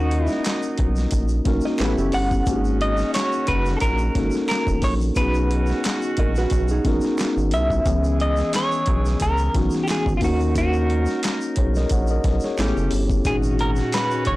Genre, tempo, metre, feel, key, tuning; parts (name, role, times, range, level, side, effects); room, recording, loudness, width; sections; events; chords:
R&B, neo-soul; 89 BPM; 4/4; swing 54% on 16ths; A4 = 436 Hz
semi-hollow electric guitar; melody; 0.0-14.4 s; E#4 to F#5; -24 LUFS; equal; tremolo
mellow tine electric piano; accompaniment; 0.0-14.4 s; A#2 to F#5; -24 LUFS; left 2 dB; medium stereo tremolo
mellow horn section; stabs; 0.0-14.4 s; A#2 to A#4; -32 LUFS; right 2 dB
rubbery square bass; bass; 0.0-14.4 s; E1 to D#2; -22 LUFS; equal
boom bap sampler-style drum kit; drums; 0.1-14.4 s; handclaps, hi-hat, kick drum, snare drum; -26 LUFS; equal
tube shaker and finger snaps; percussion; 0.3-14.3 s; -38 LUFS; right 2 dB
hollow-body jazz guitar; second line; 1.7-7.7 s; C#4 to D#5; -28 LUFS; right 4 dB
light reverb; blown-out, overdriven recording, overdrive; -18 LUFS; side -18 dB against mid
0.0-14.4 A section
0.0 D#m7; 1.8 A9; 2.5 G#9sus4; 5.2 B69; 7.9 C#m9; 10.2 D#m7; 12.6 A9; 13.3 G#9sus4